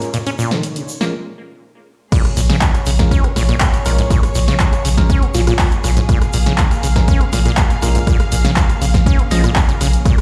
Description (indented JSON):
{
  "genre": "acid house",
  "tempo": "121 BPM",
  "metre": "4/4",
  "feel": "straight",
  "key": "Bb minor",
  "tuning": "A4 = 440 Hz",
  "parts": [
    { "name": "dark chamber string section", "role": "sustained chords", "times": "0.0-10.2 s", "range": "Bb2 to F5", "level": "-29 LUFS", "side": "equal", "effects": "sidechain pumping" },
    { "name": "bell-like tine electric piano", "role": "stabs", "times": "0.0-9.4 s", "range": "Ab3 to Eb5", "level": "-28 LUFS", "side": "equal", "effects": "phaser, tape echo" },
    { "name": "punchy analog drum machine", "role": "drums", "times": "0.0-10.2 s", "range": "crash cymbal, handclaps, hi-hat, rim click, snare drum", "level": "-24 LUFS", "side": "equal", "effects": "overdrive" },
    { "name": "tube shaker", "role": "percussion", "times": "0.0-10.2 s", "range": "none", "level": "-34 LUFS", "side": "equal", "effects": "none" },
    { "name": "acid bass, saw", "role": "riff", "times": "0.1-10.2 s", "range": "Ab2 to Db4", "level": "-24 LUFS", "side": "equal", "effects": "tube saturation, sidechain pumping, tape echo" },
    { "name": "electronic kick drum", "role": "drums", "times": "2.1-10.2 s", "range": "none", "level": "-17 LUFS", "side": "equal", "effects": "overdrive" },
    { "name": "saturated sub bass", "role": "bass", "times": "2.4-10.0 s", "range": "Bb1", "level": "-18 LUFS", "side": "equal", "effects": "sidechain pumping" },
    { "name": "bell-like FM electric piano", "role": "melody", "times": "5.3-5.5 s", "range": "F4", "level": "-26 LUFS", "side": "equal", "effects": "chorus, cassette tape, tape echo" }
  ],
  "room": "light reverb",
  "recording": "played on a big sound system in a bare room, large studio reverb",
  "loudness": "-15 LUFS",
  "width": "mono",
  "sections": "0.0-2.1 A section; 2.1-10.2 B section",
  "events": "filter sweep on tine electric piano 0.0-2.1; break 1.1-2.1; drop 2.1-10.2",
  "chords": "0.0 Bbm7"
}